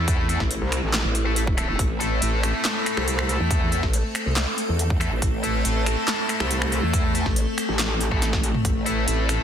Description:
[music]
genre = heavy wobble dubstep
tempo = 140 BPM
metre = 4/4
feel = half-time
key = A minor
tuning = A4 = 440 Hz
[part]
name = evolving wavetable pad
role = sustained chords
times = 0.0-9.4 s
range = A3 to A4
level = -29 LUFS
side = left 1 dB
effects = phaser, built-in reverb, sidechain pumping
[part]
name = tight distorted guitar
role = stabs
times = 0.0-9.4 s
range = A3 to A4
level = -28 LUFS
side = left 1 dB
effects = distortion, ping-pong delay
[part]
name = growl bass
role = bass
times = 0.0-9.4 s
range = E1 to E2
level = -24 LUFS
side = equal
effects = chorus, overdrive
[part]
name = big-room dance drum kit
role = drums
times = 0.1-9.4 s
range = finger snaps, handclaps, hi-hat, snare drum, toms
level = -26 LUFS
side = equal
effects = soft clipping on snare
[part]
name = electronic kick drum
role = drums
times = 0.1-8.7 s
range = none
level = -24 LUFS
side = equal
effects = none
[part]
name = metallic wobble bass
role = bass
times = 0.6-3.4, 6.4-8.5 s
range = A1 to C2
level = -25 LUFS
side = equal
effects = distortion, chorus, overdrive
[sound]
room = light reverb, digital ambience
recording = dense, heavily limited modern master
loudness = -20 LUFS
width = side -9 dB against mid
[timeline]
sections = 0.0-9.4 A section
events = drum fill 8.2-8.6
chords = 0.0 Am

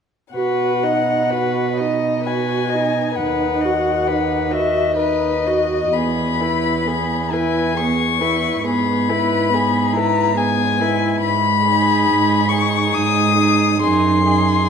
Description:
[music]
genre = classical, slow romantic movement for string quartet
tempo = 59-70 BPM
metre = 3/4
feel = rubato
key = B major, G# minor from 11.2 s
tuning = A4 = 440 Hz
[part]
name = dark violin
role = melody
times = 0.3-14.7 s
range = D#5 to D#6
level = -20 LUFS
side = left 8 dB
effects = none
[part]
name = dark viola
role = accompaniment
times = 0.3-14.7 s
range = B3 to F#4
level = -22 LUFS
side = right 3 dB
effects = none
[part]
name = warm cello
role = bass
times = 0.3-14.6 s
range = D#2 to B2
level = -22 LUFS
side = right 5 dB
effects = none
[part]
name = dark violin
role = second line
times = 0.4-14.7 s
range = G#4 to D#5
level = -23 LUFS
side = left 1 dB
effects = none
[sound]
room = wet recital hall reverb, RT60 1.7 s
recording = minimal, uncompressed stereo recording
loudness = -15 LUFS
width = side -6 dB against mid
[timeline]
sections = 0.3-14.7 A section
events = none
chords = 0.3 B; 3.2 B/D#; 5.9 E; 8.6 E/G#; 11.2 G#m; 13.8 G#7/F#

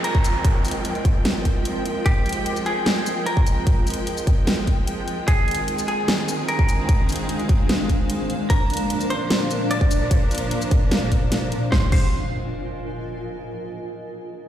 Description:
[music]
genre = heavy wobble dubstep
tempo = 149 BPM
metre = 4/4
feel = half-time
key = F dorian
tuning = A4 = 442 Hz
[part]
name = semi-hollow electric guitar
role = melody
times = 0.0-12.1 s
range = G4 to D5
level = -27 LUFS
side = right 1 dB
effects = dub echo
[part]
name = clear studio string section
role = sustained chords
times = 0.0-11.9 s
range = Eb3 to G5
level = -29 LUFS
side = right 1 dB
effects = sidechain pumping
[part]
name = dubstep drum kit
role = drums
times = 0.0-12.0 s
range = crash cymbal, hi-hat, shaker, snare drum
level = -26 LUFS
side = equal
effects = none
[part]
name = downlifter and impact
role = sound effects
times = 0.0-2.1, 11.7-13.3 s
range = none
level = -30 LUFS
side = equal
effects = none
[part]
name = granular cloud pad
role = texture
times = 0.0-13.3 s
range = Bb2 to Ab5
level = -27 LUFS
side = equal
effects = built-in reverb, sidechain pumping
[part]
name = electronic kick drum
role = drums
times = 0.1-12.0 s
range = none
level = -18 LUFS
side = equal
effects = none
[sound]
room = light reverb, digital ambience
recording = played on a big sound system in a bare room, stone room reverb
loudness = -19 LUFS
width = side -11 dB against mid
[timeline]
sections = 0.0-11.7 A section; 11.7-13.3 B section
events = none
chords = 0.0 Fmadd9; 5.3 Ab; 8.5 Bb; 11.7 Fm

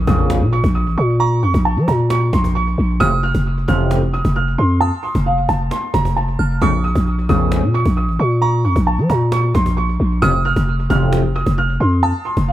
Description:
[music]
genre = hip hop, trap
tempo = 133 BPM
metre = 4/4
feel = half-time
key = Bb harmonic minor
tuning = A4 = 444 Hz
[part]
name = dark grand piano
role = melody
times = 0.0-12.5 s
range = F5 to F6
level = -21 LUFS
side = right 3 dB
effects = dub echo
[part]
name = growling 808-style bass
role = bass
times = 0.0-12.5 s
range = F1 to F3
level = -16 LUFS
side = equal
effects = none
[part]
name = impact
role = sound effects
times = 0.0-1.2 s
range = none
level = -29 LUFS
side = equal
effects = none
[part]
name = resonant sweep polysynth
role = stabs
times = 0.1-11.2 s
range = A1 to Db3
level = -20 LUFS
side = left 1 dB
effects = chorus
[part]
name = cajon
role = drums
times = 0.1-12.5 s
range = none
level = -27 LUFS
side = equal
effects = dub echo
[part]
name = delicate synth tine bell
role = second line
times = 1.2-12.5 s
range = Db6 to F6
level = -31 LUFS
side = right 4 dB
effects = chorus, dub echo
[sound]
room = little or no reverb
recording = echo-heavy mix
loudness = -14 LUFS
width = side -13 dB against mid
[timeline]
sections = 0.0-12.5 A section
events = impact 0.0-1.2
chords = 0.0 Bbm; 3.0 F; 6.6 Bbm; 10.2 F

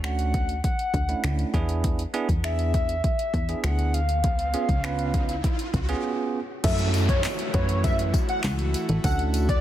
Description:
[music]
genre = dance-pop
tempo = 100 BPM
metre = 4/4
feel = straight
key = F# minor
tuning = A4 = 439 Hz
[part]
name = hollow clarinet-like synth lead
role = melody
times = 0.0-6.0 s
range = E5 to F#5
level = -30 LUFS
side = left 1 dB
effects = chorus, phaser
[part]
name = bell-like tine electric piano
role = accompaniment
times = 0.0-9.5 s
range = A3 to B4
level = -31 LUFS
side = right 5 dB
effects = sidechain pumping
[part]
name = plucky analog bass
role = bass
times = 0.0-9.6 s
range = A1 to F#2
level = -26 LUFS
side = equal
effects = sidechain pumping
[part]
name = smooth R&B drum kit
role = drums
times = 0.0-9.6 s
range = crash cymbal, finger snaps, handclaps, hi-hat, kick drum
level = -26 LUFS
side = equal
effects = overdrive
[part]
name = riser and downlifter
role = sound effects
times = 3.9-9.6 s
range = none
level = -36 LUFS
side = equal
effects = none
[part]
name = airy dreamy lead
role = melody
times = 6.6-9.6 s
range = C#5 to F#5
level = -29 LUFS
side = left 1 dB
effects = chorus, sidechain pumping, digital delay
[part]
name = airy breathy pad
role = sustained chords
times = 6.6-9.6 s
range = D3 to F#4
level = -33 LUFS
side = left 1 dB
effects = chorus, sidechain pumping
[part]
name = tambourine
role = percussion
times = 6.6-9.5 s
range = none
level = -42 LUFS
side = left 8 dB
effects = none
[sound]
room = little or no reverb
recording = dense, heavily limited modern master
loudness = -22 LUFS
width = side -12 dB against mid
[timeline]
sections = 0.0-6.6 A section; 6.6-9.6 B section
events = riser 3.9-6.6; break 6.0-6.6; drop 6.6-9.6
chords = 0.0 Dmaj7; 1.5 E7; 4.2 C#7; 6.6 F#m7; 9.0 Dmaj7

